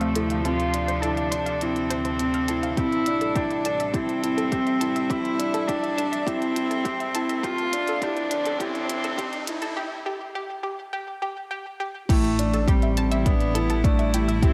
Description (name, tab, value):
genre	piano and strings electronica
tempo	103 BPM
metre	4/4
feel	straight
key	A minor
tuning	A4 = 440 Hz
part	rich cello	melody	0.0-14.5 s	G3 to F4	-28 LUFS	equal	low-pass filter
part	bright string quartet	sustained chords	0.0-14.5 s	C3 to E5	-36 LUFS	equal	low-pass filter
part	analog pluck	arpeggios	0.0-14.5 s	G4 to C6	-36 LUFS	equal	chorus, phaser, sidechain pumping, digital delay
part	felt-muted upright piano	riff	0.0-14.5 s	C4 to E4	-31 LUFS	equal	none
part	dark detuned saw bass	bass	0.0-14.5 s	A1 to D2	-32 LUFS	equal	sidechain pumping
part	minimal click drum kit	drums	0.0-14.5 s	crash cymbal, hi-hat	-37 LUFS	equal	none
part	electronic kick drum	drums	2.8-14.5 s	none	-25 LUFS	equal	none
part	riser	sound effects	6.8-9.8 s	none	-41 LUFS	equal	none
room	moderate echo chamber reverb, RT60 2.0 s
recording	high-pass filter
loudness	-25 LUFS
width	mono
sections	0.0-12.1 A section; 12.1-14.5 B section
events	build-up 0.0-12.1; filter sweep on cello 0.0-12.1; filter sweep 0.0-12.1; break 9.8-12.1; drop 12.1-14.5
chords	0.0 Dm7; 2.8 Am7; 7.4 Dm7; 12.1 Am7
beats	| 0.45 1.03 1.61 2.19 | 2.78 3.36 3.94 4.53 | 5.11 5.69 6.27 6.86 | 7.44 8.02 8.60 9.19 | 9.77 10.35 10.93 11.52 | 12.10 12.68 13.26 13.85 | 14.43